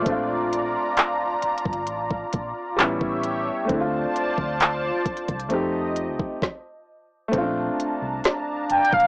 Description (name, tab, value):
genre	contemporary R&B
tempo	66 BPM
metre	4/4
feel	straight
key	Bb major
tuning	A4 = 440 Hz
part	clear baby grand piano	accompaniment	0.0-9.1 s	G3 to G4	-27 LUFS	equal	none
part	lush unison pad	sustained chords	0.0-9.1 s	D4 to Bb5	-26 LUFS	equal	chorus, phaser, sidechain pumping
part	vintage muted fingered electric bass	bass	0.1-9.1 s	G1 to F2	-34 LUFS	equal	none
part	trap drum kit	drums	0.1-9.1 s	handclaps, hi-hat, kick drum, snare drum	-23 LUFS	equal	overdrive
part	mellow horn-like synth lead	melody	8.7-9.1 s	F5 to G5	-16 LUFS	equal	chorus, cassette tape
room	light reverb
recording	home recording on cassette, small speaker sound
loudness	-22 LUFS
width	side -25 dB against mid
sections	0.0-7.3 A section; 7.3-9.1 B section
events	stop 6.4-7.3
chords	0.1 Bbmaj7; 2.8 A7; 3.7 Dm7; 5.5 F7; 7.3 Bbmaj7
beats	| 0.06 0.97 1.88 2.79 | 3.70 4.61 5.51 6.42 | 7.33 8.24